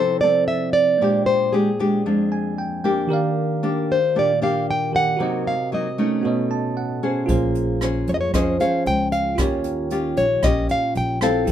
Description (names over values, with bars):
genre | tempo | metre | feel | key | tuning
bossa nova | 115 BPM | 4/4 | straight | unclear | A4 = 439 Hz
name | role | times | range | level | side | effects
nylon-string guitar | melody | 0.0-11.5 s | Ab4 to G5 | -20 LUFS | equal | none
bell-like tine electric piano | accompaniment | 0.0-11.5 s | Eb3 to A5 | -27 LUFS | right 3 dB | none
nylon-string guitar | accompaniment | 0.0-11.5 s | F2 to C5 | -22 LUFS | left 1 dB | none
upright bass | bass | 7.3-11.5 s | Bb1 to F2 | -25 LUFS | equal | none
jazz brush drum kit | drums | 7.3-11.5 s | hi-hat, kick drum, rim click | -26 LUFS | equal | none
room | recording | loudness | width
light reverb | minimal, uncompressed stereo recording | -18 LUFS | side -10 dB against mid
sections
0.0-11.5 A section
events
tine electric piano fill 2.1-3.1, 6.2-7.3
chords
0.0 Fmaj7; 1.0 Bb13; 3.1 Ebmaj7; 5.2 Cm7b5; 6.2 B9; 7.3 Bbm9; 9.4 Eb9